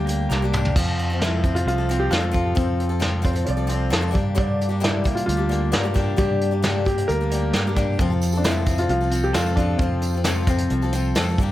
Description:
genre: folk rock and heartland rock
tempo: 133 BPM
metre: 4/4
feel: straight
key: unclear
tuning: A4 = 440 Hz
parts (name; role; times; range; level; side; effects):
- clear baby grand piano; melody; 0.0-11.3 s; C4 to G5; -27 LUFS; left 1 dB; analog delay
- picked swing-style acoustic guitar; accompaniment; 0.0-11.5 s; G2 to A4; -28 LUFS; left 6 dB; none
- electric guitar through a small old amp; riff; 0.0-11.5 s; G2 to Bb4; -28 LUFS; equal; none
- fingered electric bass; bass; 0.0-11.5 s; C2 to G2; -23 LUFS; equal; none
- soft brush drum kit; drums; 0.1-11.5 s; crash cymbal, hi-hat, kick drum, snare drum, toms; -24 LUFS; equal; none
- warm upright piano; second line; 3.3-4.7 s; C5 to D5; -32 LUFS; right 6 dB; analog delay
- tambourine; percussion; 8.2-11.3 s; none; -38 LUFS; right 5 dB; none
room: light reverb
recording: none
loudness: -19 LUFS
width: side -14 dB against mid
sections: 0.8-11.5 A section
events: drum fill 0.3-0.8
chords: 0.0 Gm; 0.8 F; 4.1 Gm; 8.0 F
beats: 0.30 | 0.76 1.21 1.66 2.11 | 2.57 3.02 3.47 3.92 | 4.38 4.83 5.28 5.73 | 6.18 6.64 7.09 7.54 | 8.00 8.45 8.90 9.35 | 9.80 10.26 10.71 11.16

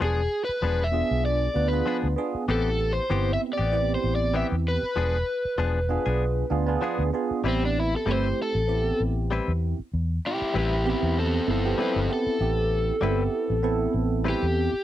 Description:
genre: blues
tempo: 97 BPM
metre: 4/4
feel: swing 55% on 16ths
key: A minor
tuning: A4 = 440 Hz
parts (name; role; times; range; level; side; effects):
- overdriven electric guitar; melody; 0.0-14.8 s; C4 to E5; -27 LUFS; left 1 dB; none
- direct-recorded clean electric guitar; stabs; 0.0-14.5 s; E3 to B4; -30 LUFS; left 5 dB; none
- vintage muted fingered electric bass; bass; 0.0-14.8 s; E1 to E2; -26 LUFS; left 1 dB; none
- barky tine electric piano; accompaniment; 0.9-14.7 s; A3 to B4; -28 LUFS; right 5 dB; phaser
room: light reverb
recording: dry, close 1970s-style studio recording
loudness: -23 LUFS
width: side -13 dB against mid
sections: 0.0-7.4 A section; 7.4-14.8 B section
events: overdriven electric guitar solo 7.4-14.8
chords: 0.0 E7b9; 2.5 Am9; 5.0 E7b9; 7.4 Am9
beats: | 0.01 0.63 1.25 1.87 | 2.49 3.11 3.73 4.35 | 4.97 5.59 6.21 6.83 | 7.45 8.07 8.69 9.31 | 9.93 10.54 11.16 11.78 | 12.40 13.02 13.64 14.25

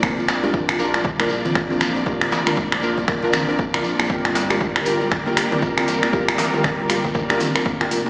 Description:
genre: afro house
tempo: 118 BPM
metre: 4/4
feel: swing 59% on 16ths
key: unclear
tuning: A4 = 441 Hz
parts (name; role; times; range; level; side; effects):
- clear symphonic string section; sustained chords; 0.0-8.1 s; F3 to D5; -26 LUFS; equal; sidechain pumping
- kalimba; arpeggios; 0.0-8.1 s; G3 to Bb4; -26 LUFS; equal; sidechain pumping, digital delay
- deep mellow chord stab; stabs; 0.0-8.1 s; D4 to Bb4; -25 LUFS; equal; chorus, sidechain pumping, digital delay
- dark detuned saw bass; bass; 0.0-8.1 s; F1 to Bb1; -31 LUFS; equal; sidechain pumping
- afro-pop drum kit; drums; 0.0-8.0 s; finger snaps, hi-hat, toms; -22 LUFS; equal; overdrive
- electronic kick drum; drums; 0.0-7.8 s; none; -26 LUFS; equal; overdrive
- congas; percussion; 0.0-8.1 s; none; -33 LUFS; equal; none
- shekere; percussion; 0.0-8.1 s; none; -34 LUFS; equal; none
- djembe; percussion; 0.2-8.1 s; none; -28 LUFS; equal; none
room: wet recital hall reverb, RT60 1.6 s, small room reverb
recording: played on a big sound system in a bare room, large studio reverb, small speaker sound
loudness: -17 LUFS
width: side -24 dB against mid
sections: 0.0-8.1 A section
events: none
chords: 0.0 Bb; 4.1 Gm7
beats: | 0.03 0.54 1.05 1.56 | 2.06 2.57 3.08 3.59 | 4.10 4.61 5.12 5.62 | 6.13 6.64 7.15 7.66

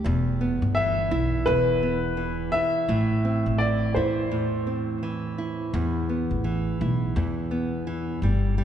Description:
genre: acoustic pop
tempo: 84 BPM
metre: 4/4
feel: swing 60% on 16ths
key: E minor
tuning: A4 = 440 Hz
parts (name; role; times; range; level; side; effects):
- nylon-string guitar; accompaniment; 0.0-8.6 s; E2 to G4; -27 LUFS; right 3 dB; none
- upright bass; bass; 0.1-8.6 s; E1 to E2; -26 LUFS; left 1 dB; none
- warm upright piano; melody; 0.7-5.0 s; B4 to E5; -26 LUFS; left 2 dB; none
room: wet church reverb, RT60 3.3 s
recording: recorded in a church or concert hall, nothing above 10.3 kHz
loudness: -23 LUFS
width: side -9 dB against mid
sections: 0.0-8.6 A section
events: none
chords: 0.1 Em; 2.9 Am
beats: | 0.05 0.76 1.47 2.18 | 2.89 3.60 4.31 5.02 | 5.73 6.44 7.15 7.86 | 8.57

